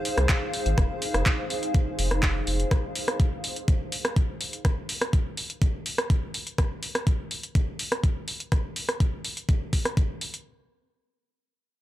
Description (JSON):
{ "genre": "acid house", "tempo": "124 BPM", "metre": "4/4", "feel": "straight", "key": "F minor pentatonic", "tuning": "A4 = 440 Hz", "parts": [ { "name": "granular cloud pad", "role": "texture", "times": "0.0-2.7 s", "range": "Eb4 to F5", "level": "-32 LUFS", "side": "equal", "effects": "built-in reverb, sidechain pumping" }, { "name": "punchy analog drum machine", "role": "drums", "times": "0.1-10.4 s", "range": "handclaps, hi-hat, rim click", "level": "-29 LUFS", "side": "equal", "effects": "none" }, { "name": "saturated sub bass", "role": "bass", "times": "0.2-2.6 s", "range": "F1 to C2", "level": "-26 LUFS", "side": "equal", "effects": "sidechain pumping" }, { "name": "electronic kick drum", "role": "drums", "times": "0.3-10.1 s", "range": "none", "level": "-25 LUFS", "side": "equal", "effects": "none" } ], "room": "little or no reverb", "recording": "none", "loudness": "-24 LUFS", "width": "side -14 dB against mid", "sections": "0.0-10.5 A section", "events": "none", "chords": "0.0 Fm7", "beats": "0.29 | 0.78 1.26 1.75 2.23 | 2.71 3.20 3.68 4.16 | 4.65 5.13 5.62 6.10 | 6.58 7.07 7.55 8.04 | 8.52 9.00 9.49 9.97" }